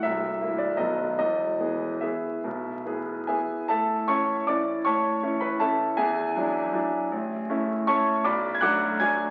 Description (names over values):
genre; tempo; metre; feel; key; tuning
classical, piano waltz; 138-170 BPM; 3/4; rubato; E major, A major from 3.7 s; A4 = 440 Hz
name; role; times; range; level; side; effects
bright grand piano; solo; 0.0-9.3 s; B0 to G#6; -26 LUFS; equal; none
room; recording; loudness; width
wet recital hall reverb, RT60 1.7 s; very old 78 rpm record, vinyl crackle, nothing above 7.6 kHz; -26 LUFS; mono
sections
0.0-3.7 A section; 3.7-9.3 B section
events
none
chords
0.0 C7; 0.8 B7; 1.2 E; 3.7 A; 6.0 E9; 7.1 A; 8.3 Bm7